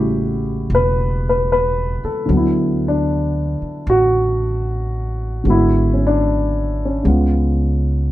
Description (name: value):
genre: jazz ballad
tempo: 76 BPM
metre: 4/4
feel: swing 68% on 8ths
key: D major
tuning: A4 = 442 Hz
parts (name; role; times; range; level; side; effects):
- dark concert grand piano; accompaniment; 0.0-8.1 s; C#3 to B4; -17 LUFS; equal; none
- upright bass; bass; 0.0-8.1 s; E1 to D2; -19 LUFS; equal; none
room: light reverb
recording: dark, warm production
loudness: -15 LUFS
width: side -15 dB against mid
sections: 0.0-8.1 A section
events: none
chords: 0.0 A7; 2.3 D69; 5.4 G#m7b5; 7.0 C#7